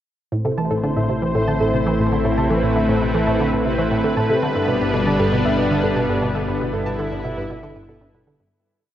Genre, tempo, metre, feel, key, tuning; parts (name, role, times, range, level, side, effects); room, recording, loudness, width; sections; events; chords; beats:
ambient, sequencer-driven space music; 117 BPM; 4/4; straight; A minor; A4 = 440 Hz
lush unison pad; sustained chords; 0.3-8.5 s; G3 to C5; -20 LUFS; equal; chorus
resonant blip pluck; riff; 0.3-8.5 s; G2 to E3; -23 LUFS; equal; chorus, ping-pong delay
fat analog bass; bass; 0.3-8.5 s; G1 to A1; -28 LUFS; equal
soft round pluck; arpeggios; 0.5-8.4 s; A4 to A5; -25 LUFS; right 1 dB; chorus, auto-pan, ping-pong delay
wet huge ambient reverb, RT60 7.6 s; worn, warbling old tape, cassette tape, warbly pitch drift; -17 LUFS; side -11 dB against mid
0.3-8.5 A section
fade-out 5.8-8.5
0.3 Am; 4.4 G
| 0.32 0.84 1.35 1.86 | 2.37 2.89 3.40 3.91 | 4.42 4.94 5.45 5.96 | 6.48 6.99 7.50 8.02